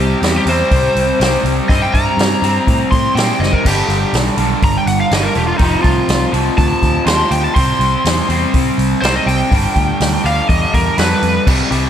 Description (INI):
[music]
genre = blues rock power trio and southern rock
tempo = 123 BPM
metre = 4/4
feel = straight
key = unclear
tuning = A4 = 441 Hz
[part]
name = overdriven slide guitar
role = melody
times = 0.0-11.5 s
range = Eb4 to C6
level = -18 LUFS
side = equal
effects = none
[part]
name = raw garage guitar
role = riff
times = 0.0-11.9 s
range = F2 to C4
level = -17 LUFS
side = equal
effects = overdrive, slapback echo
[part]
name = vintage muted picked electric bass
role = bass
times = 0.0-11.9 s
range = E1 to Bb2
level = -18 LUFS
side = equal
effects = none
[part]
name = vintage drum kit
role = drums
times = 0.2-11.8 s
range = crash cymbal, hi-hat, kick drum, snare drum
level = -18 LUFS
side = equal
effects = none
[sound]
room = moderate concert hall reverb, RT60 1.9 s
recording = big arena sound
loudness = -12 LUFS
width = side -9 dB against mid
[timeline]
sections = 0.0-11.5 A section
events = electric slide guitar solo 0.0-11.5; drum fill 3.4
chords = 0.0 C7(no3); 3.7 G; 5.6 F; 7.6 C; 9.5 G7